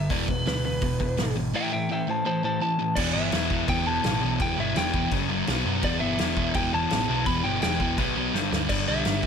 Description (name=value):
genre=punk rock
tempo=168 BPM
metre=4/4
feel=straight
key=E minor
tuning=A4 = 442 Hz
part: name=lightly driven lead guitar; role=melody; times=0.0-9.3 s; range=B4 to B5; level=-29 LUFS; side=equal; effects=none
part: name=sludgy distorted guitar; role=riff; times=0.0-9.3 s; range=E2 to B3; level=-28 LUFS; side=left 11 dB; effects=overdrive
part: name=sludgy distorted guitar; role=riff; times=0.0-9.3 s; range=E2 to B3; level=-29 LUFS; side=right 12 dB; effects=overdrive
part: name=hollow-body short-scale picked electric bass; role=bass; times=0.0-9.3 s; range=E1 to F#2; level=-32 LUFS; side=equal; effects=none
part: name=loose indie drum kit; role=drums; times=0.1-9.3 s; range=crash cymbal, hi-hat, kick drum, snare drum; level=-29 LUFS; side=equal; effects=none
room=light reverb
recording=none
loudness=-23 LUFS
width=side -7 dB against mid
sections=0.0-3.0 A section; 3.0-9.3 B section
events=lead electric guitar solo 0.0-3.0; drum fill 8.3-8.7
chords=0.1 E5; 1.5 Am; 3.0 Em; 5.1 F#5; 5.5 B5; 5.8 Em; 8.0 B5; 8.3 G5; 8.7 G